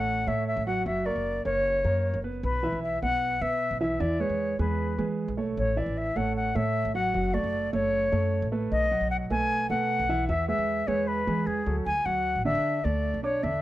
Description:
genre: latin, Cuban son and guajira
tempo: 153 BPM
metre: 4/4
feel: straight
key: unclear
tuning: A4 = 440 Hz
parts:
  - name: reedy silver concert flute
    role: melody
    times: 0.0-13.6 s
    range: G#4 to G#5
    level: -28 LUFS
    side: left 1 dB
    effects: slapback echo
  - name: warm concert grand piano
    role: arpeggios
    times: 0.0-13.6 s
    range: D3 to D6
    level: -30 LUFS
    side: right 3 dB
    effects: none
  - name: upright bass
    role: bass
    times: 0.0-13.6 s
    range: F#1 to E3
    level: -31 LUFS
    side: left 1 dB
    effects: none
room: small room ambience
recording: dry, close 1970s-style studio recording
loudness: -25 LUFS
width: side -15 dB against mid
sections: 0.0-11.9 A section; 11.9-13.6 B section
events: none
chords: 0.0 A; 0.9 F#; 2.4 Bsus4; 4.0 E; 5.6 A; 7.1 F#m; 8.7 B7; 10.3 E; 11.9 D

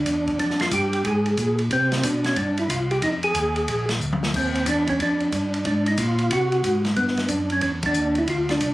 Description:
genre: soul jazz organ trio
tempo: 182 BPM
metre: 4/4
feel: swing 64% on 8ths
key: unclear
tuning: A4 = 440 Hz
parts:
  - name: percussive tonewheel organ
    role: melody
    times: 0.0-8.7 s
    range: B3 to Ab4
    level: -22 LUFS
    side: equal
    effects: slow rotary speaker, chorus vibrato
  - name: tonewheel organ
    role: bass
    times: 0.0-8.7 s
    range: Bb1 to C3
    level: -25 LUFS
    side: equal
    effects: overdrive, chorus vibrato, slow rotary speaker
  - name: open jazz drum kit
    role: drums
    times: 0.1-8.7 s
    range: crash cymbal, hi-hat, kick drum, ride cymbal, snare drum, toms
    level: -28 LUFS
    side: equal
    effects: none
room: light reverb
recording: recorded on a phone in the room, studio ambience, compression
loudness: -20 LUFS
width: side -17 dB against mid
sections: 0.0-8.7 A section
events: drum fill 4.0-4.3; band accent 7.8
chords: 0.4 Bb5; 1.7 C5; 3.0 Fm7; 3.7 Bb; 4.3 Ebmaj9; 5.7 Ab7; 7.0 G6

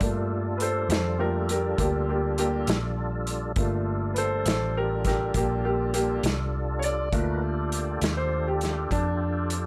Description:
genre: slow blues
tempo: 68 BPM (dotted quarters)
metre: 12/8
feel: straight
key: G minor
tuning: A4 = 441 Hz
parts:
  - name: clear upright piano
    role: accompaniment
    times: 0.0-9.7 s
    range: A3 to D5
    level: -30 LUFS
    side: equal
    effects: none
  - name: tonewheel organ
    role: sustained chords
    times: 0.0-9.7 s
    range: G3 to B4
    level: -36 LUFS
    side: equal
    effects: slow rotary speaker, chorus vibrato
  - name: vintage muted fingered electric bass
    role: bass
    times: 0.0-9.7 s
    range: G1 to G2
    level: -31 LUFS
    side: equal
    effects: none
  - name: vintage drum kit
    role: drums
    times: 0.0-9.6 s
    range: hi-hat, kick drum, snare drum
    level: -32 LUFS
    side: equal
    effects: none
room: light reverb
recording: none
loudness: -26 LUFS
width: mono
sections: 0.0-9.7 A section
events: upright piano solo 0.0-9.7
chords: 0.0 Gm9

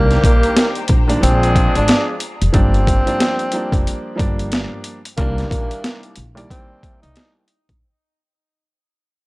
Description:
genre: hip hop, boom-bap hip-hop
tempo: 91 BPM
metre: 4/4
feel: swing 61% on 16ths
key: C minor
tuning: A4 = 440 Hz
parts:
  - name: breathy tenor saxophone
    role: melody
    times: 0.0-7.3 s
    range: Bb3 to Eb4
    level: -21 LUFS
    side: equal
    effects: high-pass filter, low-pass filter
  - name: dark grand piano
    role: accompaniment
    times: 0.0-7.4 s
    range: C2 to D5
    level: -24 LUFS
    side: right 1 dB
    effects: high-pass filter, low-pass filter
  - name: dark studio string section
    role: sustained chords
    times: 0.0-2.5 s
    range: G4 to Bb5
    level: -31 LUFS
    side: left 2 dB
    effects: none
  - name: clear horn section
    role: stabs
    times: 0.0-2.2 s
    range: Eb3 to Ab4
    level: -24 LUFS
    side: left 1 dB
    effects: high-pass filter, low-pass filter, tape echo
  - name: upright bass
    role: bass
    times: 0.0-7.8 s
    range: F1 to C2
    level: -18 LUFS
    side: equal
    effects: none
  - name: boom bap sampler-style drum kit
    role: drums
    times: 0.1-7.8 s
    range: hi-hat, kick drum, snare drum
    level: -17 LUFS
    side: equal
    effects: overdrive
room: little or no reverb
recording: dry, gritty hardware recording, transformer saturation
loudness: -14 LUFS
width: side -23 dB against mid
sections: 0.0-2.5 A section; 2.5-7.8 B section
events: fade-out 2.5-7.8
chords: 0.0 Cm7; 1.2 Bb9; 2.5 Gm7; 5.2 Cm7

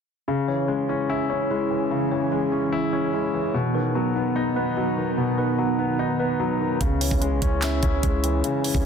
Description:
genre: hip hop, trap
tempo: 147 BPM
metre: 4/4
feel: half-time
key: C# minor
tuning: A4 = 440 Hz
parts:
  - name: dark concert grand piano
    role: accompaniment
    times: 0.3-8.9 s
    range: B2 to E4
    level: -25 LUFS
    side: left 4 dB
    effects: low-pass filter
  - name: ethereal airy pad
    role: sustained chords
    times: 1.2-6.8 s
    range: D#3 to G#4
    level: -31 LUFS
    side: right 5 dB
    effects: ensemble chorus, built-in reverb
  - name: mellow tine electric piano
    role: arpeggios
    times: 0.3-8.9 s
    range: B3 to C#5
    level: -26 LUFS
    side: right 2 dB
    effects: medium stereo tremolo, low-pass filter, digital delay
  - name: clean 808-style bass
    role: bass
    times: 6.8-8.9 s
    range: B1 to C#2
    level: -25 LUFS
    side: right 1 dB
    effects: none
  - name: trap drum kit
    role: drums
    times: 6.8-8.8 s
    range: handclaps, hi-hat, kick drum, snare drum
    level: -24 LUFS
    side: right 1 dB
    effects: none
room: moderate recital hall reverb, RT60 1.7 s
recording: dense, heavily limited modern master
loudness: -21 LUFS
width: side -6 dB against mid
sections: 0.3-6.8 A section; 6.8-8.9 B section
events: none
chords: 0.3 C#m; 3.5 B; 6.8 C#m

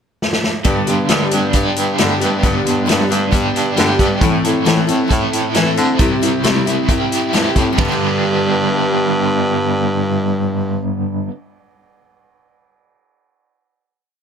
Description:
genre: folk rock and heartland rock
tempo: 135 BPM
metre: 4/4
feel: straight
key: G major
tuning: A4 = 441 Hz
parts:
  - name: vintage drum kit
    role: drums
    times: 0.2-7.9 s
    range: hi-hat, kick drum, ride cymbal, snare drum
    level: -18 LUFS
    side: equal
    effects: none
  - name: picked steel-string acoustic guitar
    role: accompaniment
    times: 0.6-11.4 s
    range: G2 to A4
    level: -19 LUFS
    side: left 2 dB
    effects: none
  - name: overdriven electric guitar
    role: riff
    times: 0.6-11.3 s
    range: G2 to A4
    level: -19 LUFS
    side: right 2 dB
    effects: tremolo
  - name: bright baritone saxophone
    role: bass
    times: 0.7-10.8 s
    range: C2 to E3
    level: -20 LUFS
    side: equal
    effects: none
room: little or no reverb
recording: none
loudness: -13 LUFS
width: side -7 dB against mid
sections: 0.0-0.7 pickup bar; 0.7-7.8 verse; 7.8-11.3 final chord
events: drum fill 0.2-0.7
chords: 0.0 N.C.; 0.7 G; 4.2 Am; 6.0 C; 7.8 G

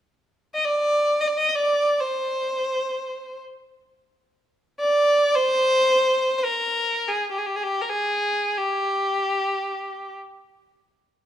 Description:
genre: turkish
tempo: free time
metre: none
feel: none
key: C makam nihavent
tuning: A4 = 440 Hz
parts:
  - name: warm violin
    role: melody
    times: 0.5-10.2 s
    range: G4 to Eb5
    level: -20 LUFS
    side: equal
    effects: none
room: light reverb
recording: minimal, uncompressed stereo recording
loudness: -20 LUFS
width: side -11 dB against mid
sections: 0.1-11.3 A section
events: none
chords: none

